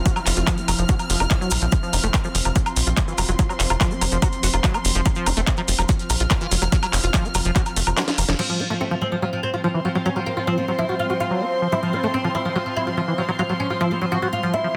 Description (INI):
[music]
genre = psychedelic trance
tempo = 144 BPM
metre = 4/4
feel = straight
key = unclear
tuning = A4 = 440 Hz
[part]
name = evolving wavetable pad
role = sustained chords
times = 0.0-14.8 s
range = F3 to F4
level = -34 LUFS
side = equal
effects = phaser, built-in reverb, sidechain pumping
[part]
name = dark chamber string section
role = texture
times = 0.0-14.8 s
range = F3 to F6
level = -32 LUFS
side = equal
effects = sidechain pumping
[part]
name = liquid acid bass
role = riff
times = 0.1-14.8 s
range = E3 to Gb4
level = -28 LUFS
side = equal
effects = chorus, sidechain pumping, digital delay
[part]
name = electronic kick drum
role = drums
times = 0.1-7.6 s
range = none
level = -22 LUFS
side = equal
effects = none
[part]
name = techno drum kit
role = drums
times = 0.1-8.5 s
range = crash cymbal, handclaps, hi-hat, snare drum, woodblock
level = -26 LUFS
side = equal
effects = soft clipping on snare
[part]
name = cabasa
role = percussion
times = 0.1-8.4 s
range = none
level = -34 LUFS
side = equal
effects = none
[part]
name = formant-sweep wobble bass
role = second line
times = 0.3-7.1 s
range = C4 to F4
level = -39 LUFS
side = equal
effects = none
[part]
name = tight sequencer bass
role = bass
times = 0.3-8.4 s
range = F1 to Bb1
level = -24 LUFS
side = equal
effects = tube saturation
[part]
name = oud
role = melody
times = 8.4-14.8 s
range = F3 to Gb4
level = -28 LUFS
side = equal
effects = phaser, sidechain pumping, delay
[sound]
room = light reverb, digital ambience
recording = dense, heavily limited modern master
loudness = -21 LUFS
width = mono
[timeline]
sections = 0.0-8.4 A section; 8.4-14.8 B section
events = kick drops out 8.0-8.4; drum fill 8.0-8.4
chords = 0.0 F5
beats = | 0.06 0.47 0.89 1.31 | 1.72 2.14 2.56 2.97 | 3.39 3.81 4.22 4.64 | 5.06 5.47 5.89 6.31 | 6.72 7.14 7.56 7.97 | 8.39 8.81 9.22 9.64 | 10.06 10.47 10.89 11.31 | 11.72 12.14 12.56 12.97 | 13.39 13.81 14.22 14.64